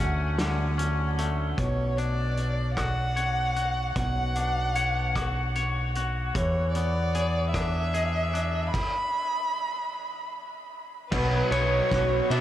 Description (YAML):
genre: post-rock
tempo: 50 BPM (dotted quarters)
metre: 6/8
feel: straight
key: B dorian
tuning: A4 = 442 Hz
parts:
  - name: dark violin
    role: melody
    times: 0.0-12.4 s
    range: B4 to B5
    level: -30 LUFS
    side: right 1 dB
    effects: tape echo
  - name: twangy electric guitar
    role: arpeggios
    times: 0.0-12.4 s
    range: B2 to C#5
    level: -32 LUFS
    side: left 3 dB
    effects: tape echo
  - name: growling fingered electric bass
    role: bass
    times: 0.0-12.4 s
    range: B1 to B2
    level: -28 LUFS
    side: equal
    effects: overdrive
  - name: loose indie drum kit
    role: drums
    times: 0.4-12.4 s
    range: crash cymbal, hi-hat, kick drum, ride cymbal, rim click, snare drum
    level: -33 LUFS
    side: equal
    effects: none
  - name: overdriven semi-hollow guitar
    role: riff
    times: 11.1-12.4 s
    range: B2 to B3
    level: -27 LUFS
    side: right 1 dB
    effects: lush chorus
room: moderate huge ambient reverb, RT60 7.0 s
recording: dreamy mix soaked in reverb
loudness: -24 LUFS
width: side -12 dB against mid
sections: 0.0-1.6 A section; 1.6-11.1 B section; 11.1-12.4 C section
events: stop 8.7-11.1; build-up 11.1-12.4; drum fill 11.1-12.4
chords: 0.0 Dmaj7(no3); 1.6 Bmadd9; 6.3 E7; 11.1 Bsus2